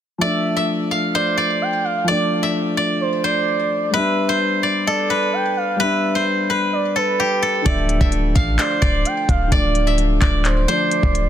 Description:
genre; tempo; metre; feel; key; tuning
hip hop, trap; 129 BPM; 4/4; half-time; D dorian; A4 = 440 Hz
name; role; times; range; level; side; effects
steel-string zither; melody; 0.2-11.3 s; G4 to F5; -20 LUFS; equal; ping-pong delay
gliding portamento lead; second line; 0.2-11.3 s; B4 to G5; -24 LUFS; right 4 dB; chorus, ping-pong delay
dark concert grand piano; accompaniment; 0.2-11.3 s; D3 to D4; -23 LUFS; left 2 dB; none
warm 808-style bass; bass; 7.7-11.3 s; D1 to A1; -19 LUFS; equal; none
trap drum kit; drums; 7.7-11.3 s; handclaps, hi-hat, kick drum; -20 LUFS; equal; vintage 12-bit sampler grit
room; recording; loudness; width
little or no reverb; dense, heavily limited modern master; -16 LUFS; side -10 dB against mid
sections
0.2-7.7 A section; 7.7-11.3 B section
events
none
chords
0.2 Dm; 3.9 G; 7.7 Dm

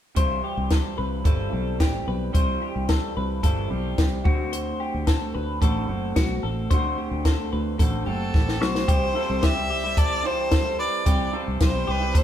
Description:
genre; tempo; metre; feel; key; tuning
jangly indie pop; 110 BPM; 4/4; straight; C major; A4 = 443 Hz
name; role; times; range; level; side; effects
electric guitar through a small old amp; accompaniment; 0.2-12.2 s; C3 to F#4; -31 LUFS; right 4 dB; none
twelve-string electric guitar; arpeggios; 0.2-12.2 s; F#4 to C5; -30 LUFS; left 4 dB; spring reverb
fingered electric bass; bass; 0.2-12.2 s; F#1 to D2; -28 LUFS; equal; none
compact cocktail drum kit; drums; 0.2-12.2 s; hi-hat, kick drum, snare drum; -22 LUFS; equal; none
clear violin; melody; 8.1-12.2 s; A4 to E5; -26 LUFS; equal; none
room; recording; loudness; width
moderate stone room reverb, RT60 1.0 s; band playing live in one room; -21 LUFS; side -10 dB against mid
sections
0.2-8.9 A section; 8.9-12.2 B section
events
drum fill 8.3-8.9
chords
0.2 C; 4.3 D7; 8.9 C

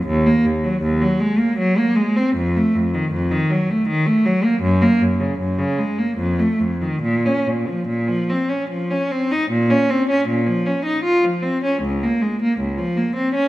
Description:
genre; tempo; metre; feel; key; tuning
classical, baroque-style suite movement for unaccompanied cello; 68-80 BPM; 3/4; rubato; Bb minor; A4 = 442 Hz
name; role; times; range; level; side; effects
rich cello; solo; 0.0-13.5 s; Db2 to F4; -17 LUFS; equal; none
room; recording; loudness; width
wet recital hall reverb, RT60 1.6 s; none; -17 LUFS; side -16 dB against mid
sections
0.0-9.5 A section; 9.5-13.5 B section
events
none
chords
none

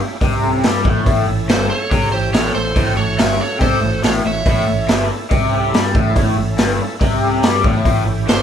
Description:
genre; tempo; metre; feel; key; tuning
blues rock power trio and southern rock; 141 BPM; 4/4; straight; A mixolydian; A4 = 440 Hz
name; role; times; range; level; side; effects
overdriven tonewheel organ; sustained chords; 0.0-8.4 s; C#4 to A4; -29 LUFS; right 4 dB; slow rotary speaker, chorus vibrato
raw garage guitar; riff; 0.0-8.4 s; G2 to G3; -19 LUFS; left 3 dB; overdrive, phaser
fingered electric bass; bass; 0.0-8.4 s; G1 to G2; -24 LUFS; equal; none
raw garage drum kit; drums; 0.2-8.4 s; hi-hat, kick drum, snare drum; -17 LUFS; equal; none
overdriven slide guitar; melody; 1.5-5.1, 8.3-8.4 s; C5 to E5; -21 LUFS; right 3 dB; none
smooth overdriven lead guitar; second line; 1.5-5.1, 8.3-8.4 s; G4 to C#5; -27 LUFS; right 3 dB; none
room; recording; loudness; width
light reverb; band playing live in one room; -14 LUFS; side -8 dB against mid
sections
0.0-8.4 A section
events
none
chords
0.0 A

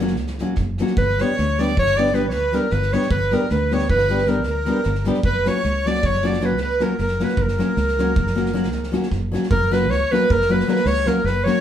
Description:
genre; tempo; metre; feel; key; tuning
balkan folk, Balkan wedding band; 309 BPM (eighths); 11/8; straight; unclear; A4 = 440 Hz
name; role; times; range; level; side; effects
nylon-string guitar; accompaniment; 0.0-11.6 s; F#3 to A#4; -22 LUFS; left 2 dB; none
fingered electric bass; bass; 0.0-11.5 s; F#1 to D2; -24 LUFS; equal; none
loose indie drum kit; percussion; 0.1-11.5 s; kick drum, snare drum; -28 LUFS; right 1 dB; none
clear clarinet; melody; 1.0-11.6 s; A#4 to D5; -22 LUFS; equal; plate reverb
bright violin; second line; 1.0-11.6 s; A#4 to D5; -28 LUFS; right 4 dB; none
room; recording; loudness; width
wet studio reverb, RT60 0.6 s; heard from further back in the room, faint mains hum; -17 LUFS; side -10 dB against mid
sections
0.0-9.5 A section; 9.5-11.6 B section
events
none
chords
0.0 F#; 1.0 G; 5.2 F#

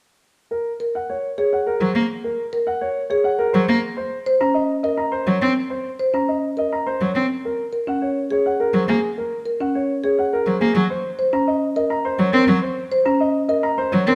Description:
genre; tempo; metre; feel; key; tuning
classical, minimalist pattern music; 104 BPM; 3/4; straight; Ab mixolydian; A4 = 440 Hz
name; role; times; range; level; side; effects
dark concert grand piano; melody; 0.5-14.2 s; Ab4 to Bb5; -25 LUFS; equal; none
marimba with soft mallets; arpeggios; 0.8-13.7 s; Db4 to C5; -24 LUFS; equal; none
rich cello; accompaniment; 1.8-14.2 s; Gb3 to C4; -21 LUFS; equal; none
room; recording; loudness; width
moderate recital hall reverb, RT60 1.5 s; none; -21 LUFS; mono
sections
0.4-14.2 A section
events
none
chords
0.4 Ab9sus4; 3.8 Gb6; 7.3 Ab9sus4; 10.8 Gb6

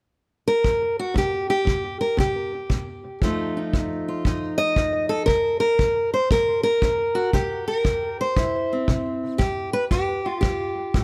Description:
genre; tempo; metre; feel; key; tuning
acoustic country blues, solo or duo; 117 BPM; 4/4; swing 65% on 8ths; unclear; A4 = 437 Hz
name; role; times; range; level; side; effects
fingerpicked steel-string acoustic guitar; melody; 0.5-11.0 s; F2 to Eb5; -24 LUFS; equal; analog delay
kick drum; drums; 0.6-11.0 s; none; -27 LUFS; equal; none
room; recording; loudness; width
little or no reverb; none; -23 LUFS; mono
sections
0.0-1.2 A section; 1.2-11.0 B section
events
none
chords
0.0 N.C.; 3.2 F7; 5.3 C7; 9.4 G7(no3)

